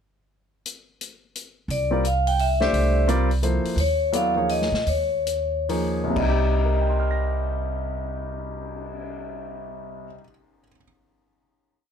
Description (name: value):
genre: modal jazz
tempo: 121-173 BPM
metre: 3/4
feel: swing 64% on 8ths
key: C minor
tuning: A4 = 440 Hz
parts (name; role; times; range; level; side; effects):
- vintage drum kit; drums; 0.7-9.0 s; crash cymbal, cymbal swell, hi-hat, kick drum, snare drum; -35 LUFS; left 4 dB; none
- vibraphone with medium hard mallets; melody; 1.7-10.2 s; Db5 to G5; -26 LUFS; left 1 dB; none
- upright bass; bass; 1.7-10.1 s; C2 to Bb2; -25 LUFS; right 1 dB; none
- warm concert grand piano; accompaniment; 1.9-10.8 s; C2 to Bb6; -26 LUFS; left 1 dB; none
room: little or no reverb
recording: close, detailed microphones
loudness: -21 LUFS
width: side -7 dB against mid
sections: 0.7-1.7 pickup bar; 1.7-6.2 A section; 6.2-9.1 final chord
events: slowing down 3.8-6.2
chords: 0.7 N.C.; 1.7 C13sus4; 3.8 Eb9sus4; 6.2 Cm